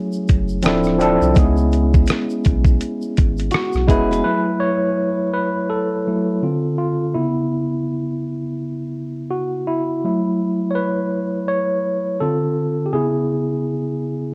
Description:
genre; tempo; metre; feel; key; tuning
lo-fi hip hop; 83 BPM; 4/4; swing 59% on 16ths; F# minor; A4 = 440 Hz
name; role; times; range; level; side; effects
tine electric piano; accompaniment; 0.0-14.3 s; C#3 to C#5; -21 LUFS; equal; none
tube shaker; percussion; 0.1-4.3 s; none; -47 LUFS; equal; none
warm sub bass; bass; 0.3-4.2 s; D1 to C#2; -23 LUFS; equal; none
dusty soul sampler-style drum kit; drums; 0.3-4.3 s; hi-hat, kick drum, rim click; -18 LUFS; equal; none
flamenco guitar; second line; 3.5-4.5 s; E4 to B4; -29 LUFS; equal; tape echo, plate reverb
room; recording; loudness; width
moderate studio reverb, RT60 0.7 s; cassette tape; -19 LUFS; mono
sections
0.0-4.3 A section; 4.3-14.3 B section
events
tine electric piano solo 4.3-14.3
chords
0.0 F#m9; 0.6 Dm7; 1.4 C#m7; 4.3 F#m7; 6.4 Dm7; 7.1 C#m7; 10.0 F#m7; 12.2 Dm7; 12.9 C#m7

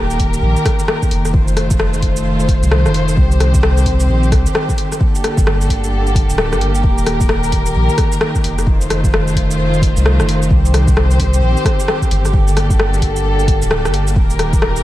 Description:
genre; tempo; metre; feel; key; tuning
future garage; 131 BPM; 4/4; swing 61% on 16ths; G minor; A4 = 440 Hz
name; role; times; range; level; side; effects
dark chamber string section; sustained chords; 0.0-14.8 s; D3 to C5; -18 LUFS; equal; vintage 12-bit sampler grit, sidechain pumping
warm sub bass; bass; 0.0-14.8 s; D1 to C2; -16 LUFS; equal; sidechain pumping
deep house drum kit; drums; 0.1-14.8 s; hi-hat, rim click, shaker; -21 LUFS; left 1 dB; overdrive
electronic kick drum; drums; 0.2-14.6 s; none; -16 LUFS; equal; overdrive
room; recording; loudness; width
light reverb; vinyl crackle; -12 LUFS; side -14 dB against mid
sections
0.0-14.8 A section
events
none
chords
0.0 Eb; 1.3 F7; 3.2 Cm; 5.0 Gmadd9; 6.8 Eb; 8.7 F7; 10.5 Cm; 12.3 Gmadd9; 14.2 Eb

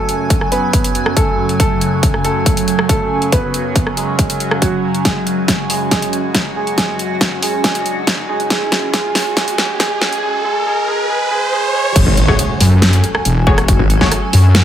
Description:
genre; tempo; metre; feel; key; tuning
heavy wobble dubstep; 139 BPM; 4/4; half-time; F# minor; A4 = 439 Hz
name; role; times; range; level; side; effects
warm baby grand piano; melody; 0.0-11.9 s; F#3 to B4; -20 LUFS; right 2 dB; tape echo
evolving wavetable pad; sustained chords; 0.0-14.6 s; F#2 to G#5; -21 LUFS; equal; chorus, built-in reverb, phaser, sidechain pumping
airy breathy pad; texture; 0.0-14.6 s; C#4 to G#5; -26 LUFS; right 2 dB; chorus, phaser, sidechain pumping
dubstep drum kit; drums; 0.1-14.6 s; crash cymbal, hi-hat, rim click, snare drum; -17 LUFS; equal; small room ambience
electronic kick drum; drums; 0.3-14.1 s; none; -17 LUFS; equal; overdrive, small room ambience
riser and impact; sound effects; 7.1-13.7 s; none; -21 LUFS; right 1 dB; none
wobble bass; bass; 12.0-14.6 s; E1 to F#2; -10 LUFS; equal; chorus, overdrive
snarling distorted saw bass; bass; 12.1-14.1 s; G#1; -15 LUFS; equal; distortion, overdrive
orchestra-hit-like synth stab; stabs; 12.3-14.1 s; A3 to C#5; -20 LUFS; left 3 dB; built-in reverb, tape echo
room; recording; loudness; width
light reverb; high-pass filter; -12 LUFS; side -10 dB against mid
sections
0.0-12.0 A section; 12.0-14.6 B section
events
build-up 0.0-12.0; filter sweep 0.0-12.0; drum fill 5.1-10.2; riser 7.1-12.0; drop 12.0-14.6; impact 12.0-13.7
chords
0.0 F#madd9

